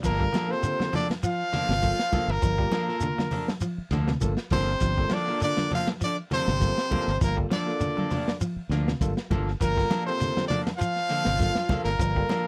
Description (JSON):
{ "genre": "afrobeat", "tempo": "100 BPM", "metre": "4/4", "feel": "swing 55% on 16ths", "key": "G minor", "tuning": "A4 = 440 Hz", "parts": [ { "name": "electric guitar at the edge of break-up", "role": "arpeggios", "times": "0.0-12.5 s", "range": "C3 to G3", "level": "-35 LUFS", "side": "equal", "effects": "none" }, { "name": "electric guitar at the edge of break-up", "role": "stabs", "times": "0.0-12.5 s", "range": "F3 to A4", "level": "-36 LUFS", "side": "equal", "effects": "subtle chorus" }, { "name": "fingered electric bass", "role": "bass", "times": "0.0-12.2 s", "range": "G1 to D2", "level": "-30 LUFS", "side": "equal", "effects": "none" }, { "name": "crunchy breakbeat drum kit", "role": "drums", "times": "0.0-12.5 s", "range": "hi-hat, kick drum, ride cymbal, snare drum", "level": "-34 LUFS", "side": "equal", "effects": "none" }, { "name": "shekere", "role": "percussion", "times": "0.0-12.5 s", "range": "none", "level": "-34 LUFS", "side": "equal", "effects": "none" }, { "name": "brilliant trumpet", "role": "melody", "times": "0.1-12.5 s", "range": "Bb4 to F5", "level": "-30 LUFS", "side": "equal", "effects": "none" }, { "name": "raspy alto saxophone", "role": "second line", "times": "0.1-12.5 s", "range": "Bb3 to F4", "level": "-40 LUFS", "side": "equal", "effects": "none" }, { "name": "raspy baritone saxophone", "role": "second line", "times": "0.1-12.5 s", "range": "Bb2 to F3", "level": "-40 LUFS", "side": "equal", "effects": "none" }, { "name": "overdriven tine electric piano", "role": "accompaniment", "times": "0.2-12.3 s", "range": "Bb3 to Bb4", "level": "-37 LUFS", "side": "equal", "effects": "none" }, { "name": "congas", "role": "percussion", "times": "0.2-12.5 s", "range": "none", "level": "-35 LUFS", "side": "equal", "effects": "none" } ], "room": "little or no reverb", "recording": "dry, close 1970s-style studio recording", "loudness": "-26 LUFS", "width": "mono", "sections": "0.0-12.5 A section", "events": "none", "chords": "0.0 Gm9" }